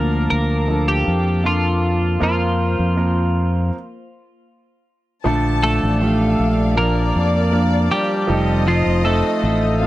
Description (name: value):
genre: pop ballad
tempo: 79 BPM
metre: 4/4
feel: straight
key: Bb major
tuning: A4 = 440 Hz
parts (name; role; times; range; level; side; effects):
- twelve-string electric guitar; melody; 0.0-9.9 s; F3 to Bb4; -20 LUFS; equal; none
- clear concert grand piano; accompaniment; 0.0-9.9 s; D3 to Bb4; -22 LUFS; right 2 dB; none
- chorused pulse-width pad; sustained chords; 0.0-9.9 s; Bb3 to Eb6; -29 LUFS; left 2 dB; none
- fingered electric bass; bass; 0.0-9.9 s; F1 to F2; -19 LUFS; equal; none
- warm studio violin section; second line; 5.2-9.9 s; D5 to A5; -27 LUFS; left 3 dB; none
room: little or no reverb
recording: dry, close 1970s-style studio recording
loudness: -16 LUFS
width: side -16 dB against mid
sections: 0.0-5.3 A section; 5.3-9.9 B section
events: stop 3.7-5.3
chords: 0.0 Bbmaj7/D; 2.2 Fsus4; 5.3 Bbmaj7; 8.3 F7